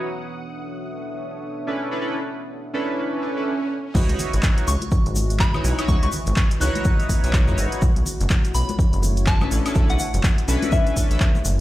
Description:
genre	deep house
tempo	124 BPM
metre	4/4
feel	swing 60% on 16ths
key	C# minor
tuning	A4 = 440 Hz
part	deep dark ambient pad	sustained chords	0.0-11.6 s	E3 to E5	-33 LUFS	left 1 dB	chorus, built-in reverb, sidechain pumping
part	chorused polysynth	stabs	0.0-11.3 s	C#4 to C#5	-26 LUFS	equal	sidechain pumping, digital delay
part	soft string machine	texture	0.0-3.0 s	F#5 to D#6	-42 LUFS	equal	ensemble chorus
part	swell	sound effects	3.2-3.9 s	none	-31 LUFS	right 4 dB	none
part	rubbery square bass	bass	3.9-11.6 s	F#1 to F#2	-22 LUFS	equal	sidechain pumping
part	deep house drum kit	drums	3.9-11.6 s	crash cymbal, handclaps, hi-hat, woodblock	-29 LUFS	equal	none
part	electronic kick drum	drums	3.9-11.3 s	none	-20 LUFS	equal	none
part	congas	percussion	4.0-11.4 s	none	-33 LUFS	left 2 dB	none
part	tube shaker	percussion	4.0-11.6 s	none	-35 LUFS	left 3 dB	none
part	soft synth bell	melody	4.7-11.2 s	E5 to F#6	-30 LUFS	left 2 dB	chorus, phaser, dub echo
room	digital ambience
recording	played on a big sound system in a bare room, large studio reverb, low-pass filter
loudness	-18 LUFS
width	side -15 dB against mid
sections	0.0-3.9 A section; 3.9-11.6 B section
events	filter sweep on ambient pad 0.0-3.9; swell 3.2-3.9; drop 3.9-11.6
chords	0.1 Bm11; 3.9 C#m11; 7.8 Bm11

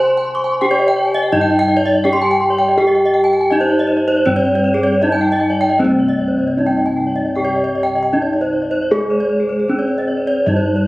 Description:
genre	Balinese gamelan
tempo	77-86 BPM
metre	4/4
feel	straight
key	C pelog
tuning	A4 = 442 Hz
part	gamelan-type bronze metallophone	melody	0.0-10.9 s	Ab3 to C5	-19 LUFS	equal	slapback echo
part	gamelan-type bronze metallophone	arpeggios	0.0-10.9 s	Ab4 to Db6+35c	-19 LUFS	right 1 dB	none
part	gamelan-type bossed gongs	bass	0.0-10.9 s	C2 to C5	-18 LUFS	equal	none
part	gamelan-type bronze metallophone	arpeggios	0.1-10.8 s	Ab4 to C6	-21 LUFS	left 1 dB	none
room	moderate recital hall reverb, RT60 1.8 s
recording	recorded on a phone in the room, studio reverb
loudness	-13 LUFS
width	side -19 dB against mid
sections	0.0-5.8 A section; 5.8-10.9 B section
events	none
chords	none

